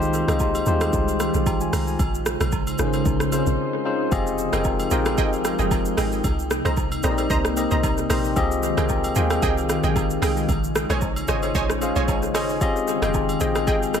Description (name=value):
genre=amapiano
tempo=113 BPM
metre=4/4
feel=swing 55% on 16ths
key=F minor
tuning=A4 = 441 Hz
part: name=bright tine electric piano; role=accompaniment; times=0.0-14.0 s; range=G3 to Bb5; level=-25 LUFS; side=left 4 dB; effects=analog delay
part: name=glassy FM pad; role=sustained chords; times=0.0-14.0 s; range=C3 to G5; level=-27 LUFS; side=right 1 dB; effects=ensemble chorus, built-in reverb
part: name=deep log drum bass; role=bass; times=0.0-14.0 s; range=F1 to Eb2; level=-26 LUFS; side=equal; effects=none
part: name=afro-pop drum kit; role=drums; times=0.0-14.0 s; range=hi-hat, kick drum, rim click, shaker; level=-26 LUFS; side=right 1 dB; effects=overdrive, analog delay
part: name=agogo bells and woodblock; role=percussion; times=0.3-14.0 s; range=none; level=-35 LUFS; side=right 2 dB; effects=analog delay
part: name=analog pluck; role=stabs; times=4.5-13.8 s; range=Ab4 to Bb5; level=-28 LUFS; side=right 3 dB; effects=chorus, analog delay
room=light reverb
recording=echo-heavy mix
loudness=-20 LUFS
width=side -8 dB against mid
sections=0.0-14.0 A section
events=break 3.6-4.1; tine electric piano fill 11.6-12.6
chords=0.0 Fm9/C; 2.0 Bbm11; 4.1 Fm9; 6.2 Cm7; 8.4 Fm9/C; 10.5 Bbm11; 12.6 Fm9